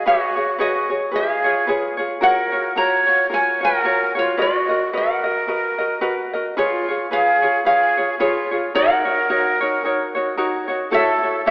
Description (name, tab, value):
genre	Hawaiian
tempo	110 BPM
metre	4/4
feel	swing 57% on 8ths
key	F# major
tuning	A4 = 440 Hz
part	ukulele	melody	0.0-11.5 s	C#5 to A#5	-20 LUFS	equal	none
part	breathy jazz flute	second line	0.0-11.5 s	E#4 to C#5	-20 LUFS	right 1 dB	none
part	ukulele	accompaniment	0.0-11.5 s	D#4 to D#5	-21 LUFS	equal	none
room	wet concert hall reverb, RT60 2.0 s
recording	AM radio sound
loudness	-16 LUFS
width	side -23 dB against mid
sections	0.0-10.9 A section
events	none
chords	0.1 C#7sus4; 1.1 C#7; 2.2 F#maj7; 4.4 Bmaj7; 6.6 C#7; 8.7 F#6; 10.9 F#m7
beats	| 0.06 0.60 1.14 1.68 | 2.22 2.76 3.31 3.85 | 4.39 4.93 5.47 6.02 | 6.56 7.10 7.65 8.19 | 8.74 9.28 9.82 10.37 | 10.91 11.46